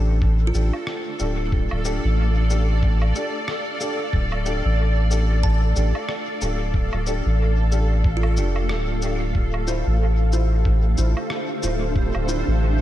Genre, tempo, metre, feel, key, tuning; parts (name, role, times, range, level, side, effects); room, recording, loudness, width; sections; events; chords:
ambient dub; 92 BPM; 4/4; swing 58% on 16ths; A4 = 439 Hz
granular cloud pad; sustained chords; 0.0-12.8 s; D4 to F5; -27 LUFS; equal; built-in reverb, ensemble chorus
dark upright piano; stabs; 0.0-12.4 s; D4 to C5; -31 LUFS; left 1 dB; dub echo
soft dub sub bass; bass; 0.0-12.8 s; D1 to A1; -20 LUFS; equal
electronic kick drum; drums; 0.2-12.1 s; -22 LUFS; equal; studio reverb
kalimba; arpeggios; 0.5-10.1 s; F4 to A5; -36 LUFS; right 4 dB; vintage 12-bit sampler grit, dub echo
electronic cabasa, woodblock and rim click; drums; 0.5-12.4 s; -34 LUFS; equal; studio reverb, dub echo
bubbling stepped-filter texture; texture; 10.3-12.8 s; G4 to G5; -37 LUFS; right 6 dB
light reverb; -19 LUFS; side -13 dB against mid
0.0-12.8 A section
0.0 F6/D; 9.3 Dm7